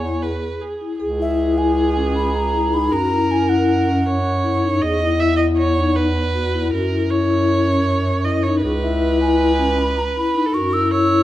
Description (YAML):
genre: contemporary instrumental, chamber music in an uneven meter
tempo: 157 BPM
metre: 5/4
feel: straight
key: unclear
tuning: A4 = 440 Hz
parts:
  - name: bright baroque flute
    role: melody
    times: 0.0-4.6, 8.8-11.2 s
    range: E5 to E6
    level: -22 LUFS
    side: right 1 dB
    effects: none
  - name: rich viola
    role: second line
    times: 0.0-11.2 s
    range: G#4 to E5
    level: -23 LUFS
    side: right 3 dB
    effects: none
  - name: breathy bass clarinet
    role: bass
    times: 0.0-11.2 s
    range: C#2 to F#2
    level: -22 LUFS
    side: equal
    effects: none
  - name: vibraphone with medium mallets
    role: arpeggios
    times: 0.1-11.2 s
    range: C#4 to G#4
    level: -20 LUFS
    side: left 3 dB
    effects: none
room: wet recital hall reverb, RT60 1.4 s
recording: none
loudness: -16 LUFS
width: side -14 dB against mid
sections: 0.0-1.0 A section; 1.0-11.2 B section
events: none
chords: 0.0 E6; 1.0 C#m; 2.9 F#7; 4.8 Emaj7(no3); 6.7 F#7; 8.6 C#m7; 10.5 F#7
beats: 0.24 0.62 | 1.00 1.39 1.77 2.15 2.53 | 2.91 3.30 3.68 4.06 4.44 | 4.83 5.21 5.59 5.97 6.35 | 6.73 7.11 7.49 7.88 8.26 | 8.63 9.02 9.40 9.78 10.15 | 10.54 10.91